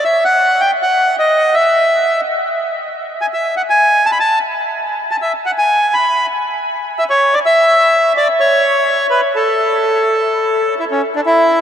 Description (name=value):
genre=tango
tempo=127 BPM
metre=4/4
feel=rubato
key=A major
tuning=A4 = 440 Hz
part: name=bandoneon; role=solo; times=0.0-11.6 s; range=C#4 to B5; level=-12 LUFS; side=equal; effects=none
room=wet huge ambient reverb, RT60 9.4 s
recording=in a vast, echoing space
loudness=-12 LUFS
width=side -9 dB against mid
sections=0.0-11.3 A section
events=none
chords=none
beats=0.37 0.84 1.31 | 1.77 2.25 2.72 3.20 | 3.67 4.15 4.63 5.10 | 5.58 6.05 6.52 6.99 | 7.46 7.93 8.40 8.87 | 9.35 9.82 10.30 10.78 | 11.26